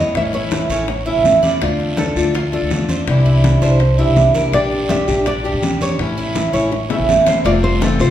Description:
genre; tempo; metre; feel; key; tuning
latin, Cuban son and guajira; 164 BPM; 4/4; straight; unclear; A4 = 440 Hz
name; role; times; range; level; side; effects
nylon-string guitar; melody; 0.0-1.0, 4.5-8.1 s; C5 to E5; -21 LUFS; left 1 dB; none
picked acoustic archtop guitar; accompaniment; 0.0-8.1 s; C3 to G4; -20 LUFS; left 3 dB; none
Cuban tres; arpeggios; 0.0-8.1 s; D4 to E5; -19 LUFS; right 4 dB; none
upright bass; bass; 0.1-8.1 s; F1 to D2; -18 LUFS; equal; none
guiro; percussion; 0.1-8.1 s; none; -30 LUFS; right 3 dB; none
bongos; percussion; 0.2-8.1 s; none; -26 LUFS; left 5 dB; none
congas; percussion; 0.2-8.1 s; none; -24 LUFS; equal; none
room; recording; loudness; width
wet recital hall reverb, RT60 1.4 s; recorded in a church or concert hall; -13 LUFS; side -11 dB against mid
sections
0.0-7.5 A section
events
drum fill 6.7-7.5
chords
0.1 A; 1.6 Dm; 3.1 Cadd9; 4.5 Gm/Bb; 6.0 A; 7.5 Fmaj7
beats
| 0.15 0.52 0.88 1.25 | 1.61 1.98 2.35 2.71 | 3.08 3.44 3.81 4.17 | 4.54 4.90 5.27 5.63 | 6.00 6.36 6.73 7.09 | 7.46 7.82

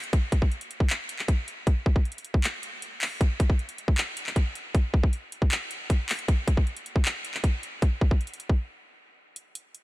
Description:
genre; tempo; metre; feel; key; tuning
hip hop; 156 BPM; 4/4; half-time; none; none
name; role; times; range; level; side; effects
trap drum kit; drums; 0.0-9.8 s; handclaps, hi-hat, kick drum; -24 LUFS; equal; none
room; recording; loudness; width
little or no reverb; none; -24 LUFS; side -19 dB against mid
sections
0.0-9.8 A section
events
break 2.4-3.2, 8.6-9.4; kick muted 9.4-9.8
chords
none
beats
| 0.13 0.52 0.90 1.28 | 1.67 2.05 2.44 2.82 | 3.21 3.59 3.98 4.36 | 4.75 5.13 5.51 5.90 | 6.28 6.67 7.05 7.44 | 7.82 8.21 8.59 8.98 | 9.36 9.75

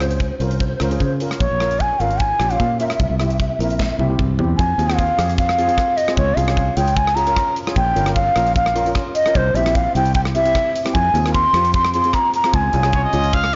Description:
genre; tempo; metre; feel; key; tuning
calypso; 151 BPM; 4/4; swing 53% on 16ths; F minor; A4 = 441 Hz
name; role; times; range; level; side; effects
breathy bright bansuri; melody; 0.0-13.3 s; C5 to C6; -21 LUFS; equal; none
steel pan; accompaniment; 0.0-13.4 s; C4 to Bb4; -28 LUFS; equal; none
fingered electric bass; bass; 0.0-13.6 s; G1 to Db3; -24 LUFS; equal; none
tight metal drum kit; drums; 0.0-13.6 s; hi-hat, kick drum, rim click, snare drum, toms; -26 LUFS; equal; soft clipping on snare
warm trumpet; second line; 12.9-13.6 s; Db5 to F5; -23 LUFS; equal; none
room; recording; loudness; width
moderate recital hall reverb, RT60 1.5 s; blown-out, overdriven recording, overdrive, nothing above 7.5 kHz; -18 LUFS; mono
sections
0.0-4.6 A section; 4.6-13.6 B section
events
drum fill 3.8-4.6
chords
0.0 Dbmaj7; 1.4 Bbm7; 3.0 C7; 4.6 Fm7; 6.2 Db; 7.8 Bbm; 9.4 C; 10.9 Fm7; 12.5 Db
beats
0.20 0.60 1.00 | 1.40 1.80 2.20 2.60 | 3.00 3.39 3.79 4.19 | 4.59 4.99 5.38 5.78 | 6.18 6.57 6.97 7.37 | 7.76 8.16 8.56 8.96 | 9.35 9.75 10.15 10.55 | 10.95 11.34 11.74 12.14 | 12.54 12.93 13.33

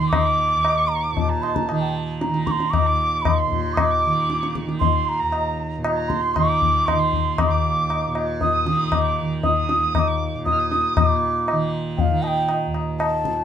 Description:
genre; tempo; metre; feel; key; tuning
indian classical, Hindustani; 116 BPM; 7/4; straight; Eb raga yaman; A4 = 440 Hz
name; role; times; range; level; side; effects
mellow hollow bansuri; melody; 0.0-13.4 s; F5 to Eb6; -22 LUFS; right 2 dB; none
dark erhu; second line; 0.0-11.1 s; A5 to F6; -30 LUFS; right 3 dB; none
tanpura; drone; 0.0-13.4 s; Eb2 to Eb3; -26 LUFS; right 2 dB; none
tabla; percussion; 0.1-13.4 s; none; -23 LUFS; left 4 dB; none
room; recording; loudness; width
moderate small room reverb, RT60 0.5 s; dark, warm production; -18 LUFS; side -9 dB against mid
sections
0.0-11.0 A section; 11.0-13.4 B section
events
speeding up 0.0-13.4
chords
none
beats
| 0.12 0.64 1.17 1.69 2.21 2.73 3.25 | 3.77 4.29 4.81 5.32 5.84 6.36 6.87 | 7.38 7.90 8.41 8.92 9.44 9.95 10.46 | 10.96 11.47 11.98 12.49 12.99

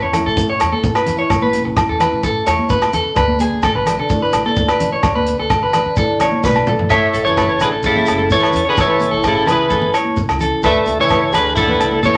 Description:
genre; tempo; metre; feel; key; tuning
highlife guitar band; 129 BPM; 4/4; straight; A major; A4 = 439 Hz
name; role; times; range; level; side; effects
flamenco guitar; accompaniment; 0.0-12.2 s; A2 to A4; -28 LUFS; equal; none
clean electric guitar; arpeggios; 0.0-12.1 s; G#4 to E5; -21 LUFS; equal; none
upright bass; bass; 0.0-12.0 s; F#1 to D3; -28 LUFS; equal; none
vintage drum kit; drums; 0.1-12.2 s; hi-hat, kick drum, rim click, snare drum, toms; -25 LUFS; equal; none
agogo bells; percussion; 0.1-12.2 s; none; -23 LUFS; equal; none
congas; percussion; 0.1-12.1 s; none; -27 LUFS; equal; none
shekere; percussion; 0.1-12.1 s; none; -32 LUFS; equal; none
clean electric guitar; melody; 6.9-12.2 s; E4 to E5; -18 LUFS; equal; vibrato effect
clear trombone; second line; 6.9-12.2 s; C#3 to A3; -23 LUFS; equal; none
room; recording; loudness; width
wet studio reverb, RT60 0.7 s; none; -16 LUFS; mono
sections
0.0-6.9 A section; 6.9-12.2 B section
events
drum fill 6.4-6.9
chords
0.0 Aadd9; 3.2 D6; 6.9 Aadd9; 10.6 Dsus2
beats
0.37 0.84 | 1.30 1.77 2.24 2.70 | 3.17 3.63 4.10 4.57 | 5.03 5.50 5.96 6.43 | 6.90 7.37 7.83 8.30 | 8.77 9.23 9.70 10.17 | 10.63 11.10 11.57 12.03

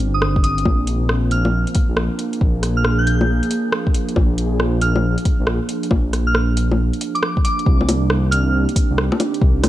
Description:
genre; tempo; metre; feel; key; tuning
future garage; 137 BPM; 4/4; swing 65% on 16ths; unclear; A4 = 440 Hz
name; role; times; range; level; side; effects
warbly tape-like pad; sustained chords; 0.0-9.7 s; Eb3 to Ab4; -24 LUFS; right 2 dB; chorus, built-in reverb, sidechain pumping
dark detuned saw bass; bass; 0.0-9.7 s; G1 to C2; -18 LUFS; equal; sidechain pumping
deep house drum kit; drums; 0.0-9.7 s; bongos, hi-hat, rim click; -22 LUFS; left 1 dB; vintage 12-bit sampler grit
soft synth bell; melody; 0.1-8.6 s; D6 to G6; -24 LUFS; equal; chorus, vintage 12-bit sampler grit, tape echo
electronic kick drum; drums; 0.4-9.5 s; none; -16 LUFS; equal; vintage 12-bit sampler grit
room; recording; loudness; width
little or no reverb; cassette tape; -16 LUFS; side -14 dB against mid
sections
0.0-7.7 A section; 7.7-9.7 B section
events
none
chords
0.0 Cmadd9; 0.7 Bb7; 7.7 Cmadd9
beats
0.22 | 0.66 1.09 1.53 1.97 | 2.41 2.85 3.29 3.72 | 4.16 4.60 5.04 5.47 | 5.91 6.35 6.79 7.23 | 7.67 8.10 8.54 8.98 | 9.42

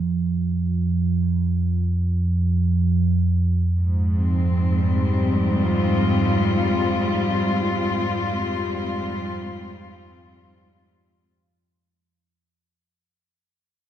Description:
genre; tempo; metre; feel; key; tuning
dark ambient drone; free time; none; none; F minor; A4 = 440 Hz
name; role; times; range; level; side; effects
deep rumbling drone; drone; 0.0-11.4 s; F2 to F3; -21 LUFS; right 2 dB; built-in reverb, lush chorus
warm studio cello section; sustained chords; 3.8-11.3 s; Ab2 to F4; -21 LUFS; left 2 dB; none
room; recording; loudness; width
light reverb, studio ambience; none; -19 LUFS; side -10 dB against mid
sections
0.0-11.3 A section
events
filter sweep on synth drone 0.0-11.3; fade-out 6.3-11.3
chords
0.0 Fmadd9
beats
free time

